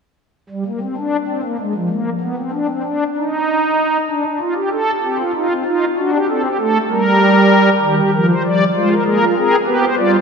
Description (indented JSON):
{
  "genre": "classical, baroque-style 4-part fugue for pipe organ",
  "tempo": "65 BPM (dotted quarters)",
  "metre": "6/8",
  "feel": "straight",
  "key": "C minor",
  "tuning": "A4 = 440 Hz",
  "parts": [
    { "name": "pipe organ, strings celeste", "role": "solo", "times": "0.5-10.2 s", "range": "Eb3 to D5", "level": "-14 LUFS", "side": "equal", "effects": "none" }
  ],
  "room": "wet church reverb, RT60 2.7 s",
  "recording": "recorded in a church or concert hall",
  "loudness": "-14 LUFS",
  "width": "side -5 dB against mid",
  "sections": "0.3-10.2 A section",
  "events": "none",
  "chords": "0.3 N.C.; 4.1 G5/D; 5.0 Cmadd11; 6.0 D7; 6.9 Gm; 7.8 Cm/Eb; 8.7 Ab69; 9.7 G7"
}